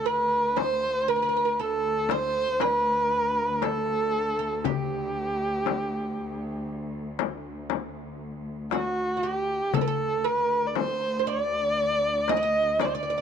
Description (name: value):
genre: Turkish makam ensemble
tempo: 118 BPM (eighths)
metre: 10/8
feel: straight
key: D makam hicaz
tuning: A4 = 440 Hz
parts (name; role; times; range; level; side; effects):
- dark kamancheh; melody; 0.0-13.2 s; F#4 to Eb5; -25 LUFS; equal; none
- oud; second line; 0.0-13.2 s; F#4 to Eb5; -32 LUFS; right 14 dB; none
- warm studio cello section; drone; 0.0-13.2 s; D2; -35 LUFS; equal; none
- darbuka; percussion; 0.6-13.0 s; none; -31 LUFS; left 12 dB; none
- frame drum; percussion; 0.6-13.0 s; none; -31 LUFS; left 13 dB; none
room: light reverb, studio ambience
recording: 1960s-style stereo with parts hard left and right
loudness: -24 LUFS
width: side -7 dB against mid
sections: 0.0-13.2 A section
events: none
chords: none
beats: 0.06 0.57 1.08 1.59 2.10 2.61 3.12 3.62 4.13 | 4.64 5.15 5.66 6.17 6.68 7.19 7.70 8.21 8.72 9.23 | 9.74 10.25 10.76 11.27 11.78 12.29 12.80